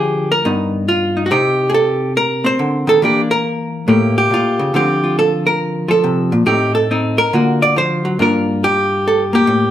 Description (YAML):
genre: solo jazz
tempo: 140 BPM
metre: 4/4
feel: swing 65% on 8ths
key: G minor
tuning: A4 = 440 Hz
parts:
  - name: hollow-body jazz guitar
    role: solo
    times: 0.0-9.7 s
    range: G2 to D5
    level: -13 LUFS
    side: equal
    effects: none
room: wet studio reverb, RT60 0.8 s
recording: band playing live in one room, lossy compression artefacts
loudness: -13 LUFS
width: side -11 dB against mid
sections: 0.0-9.7 A section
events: none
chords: 0.4 G7alt; 1.3 Cm9; 3.0 Em7b5; 3.9 A7b9; 4.7 Dm7; 6.5 Adim; 7.3 D7alt; 8.2 Gm9